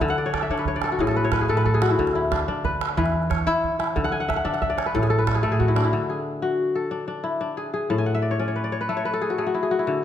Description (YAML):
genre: west african traditional, West African string and xylophone music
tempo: 122 BPM (dotted quarters)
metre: 12/8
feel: straight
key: D lydian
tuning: A4 = 440 Hz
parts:
  - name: kora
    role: arpeggios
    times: 0.0-10.0 s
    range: A2 to A5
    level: -22 LUFS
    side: left 3 dB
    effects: none
  - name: upright bass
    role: bass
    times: 0.0-5.9 s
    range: A1 to E3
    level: -27 LUFS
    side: right 2 dB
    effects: none
  - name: calabash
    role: percussion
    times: 0.0-5.9 s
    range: none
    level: -28 LUFS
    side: right 7 dB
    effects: none
room: moderate recital hall reverb, RT60 1.5 s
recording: none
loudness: -21 LUFS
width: side -10 dB against mid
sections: 0.0-5.9 A section; 5.9-10.0 B section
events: kora fill 0.1-2.0, 4.0-5.9, 7.9-9.9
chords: 0.0 Dmaj13; 1.0 Amaj13; 2.0 Bmadd11/D; 3.0 E5; 4.0 Dmaj9#11; 4.9 F#m11/A; 5.9 D; 7.9 A